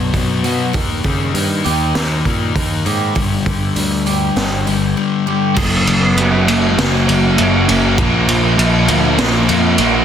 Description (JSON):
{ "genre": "quiet-loud alternative rock", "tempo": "100 BPM", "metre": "4/4", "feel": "straight", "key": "unclear", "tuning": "A4 = 440 Hz", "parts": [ { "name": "picked steel-string acoustic guitar", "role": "arpeggios", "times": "0.0-5.6 s", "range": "G2 to G4", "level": "-24 LUFS", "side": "right 10 dB", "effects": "none" }, { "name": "overdriven semi-hollow guitar", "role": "riff", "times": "0.0-10.0 s", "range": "F#2 to D#4", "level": "-18 LUFS", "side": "left 8 dB", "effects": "spring reverb" }, { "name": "growling picked electric bass", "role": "bass", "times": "0.0-10.0 s", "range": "F#1 to C#3", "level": "-19 LUFS", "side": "right 1 dB", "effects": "overdrive" }, { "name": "raw garage drum kit", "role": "drums", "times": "0.1-9.9 s", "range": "crash cymbal, hi-hat, kick drum, ride cymbal, snare drum", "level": "-18 LUFS", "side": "right 1 dB", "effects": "soft clipping on kick" }, { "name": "scooped high-gain guitar", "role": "riff", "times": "5.5-10.0 s", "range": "F#2 to A#3", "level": "-22 LUFS", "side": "right 3 dB", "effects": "distortion" }, { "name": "dark cello", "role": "melody", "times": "5.6-9.7 s", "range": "E#3 to B3", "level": "-20 LUFS", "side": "equal", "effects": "digital delay" }, { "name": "string machine, violas", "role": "sustained chords", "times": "5.6-10.0 s", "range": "E#4 to A#5", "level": "-30 LUFS", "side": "right 3 dB", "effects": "none" }, { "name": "crunchy overdriven guitar", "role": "riff", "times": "5.6-10.0 s", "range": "F#2 to A#3", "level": "-20 LUFS", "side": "right 14 dB", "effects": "phaser" } ], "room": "light reverb, studio reverb", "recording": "dense, heavily limited modern master", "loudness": "-12 LUFS", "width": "side -8 dB against mid", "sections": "0.0-5.6 A section; 5.6-10.0 B section", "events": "none", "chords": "0.0 Bm; 0.7 D#; 3.2 G5; 5.6 F#; 8.0 A#", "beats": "0.14 | 0.74 1.35 1.95 2.56 | 3.16 3.77 4.37 4.97 | 5.58 6.18 6.78 7.38 | 7.98 8.58 9.18 9.79" }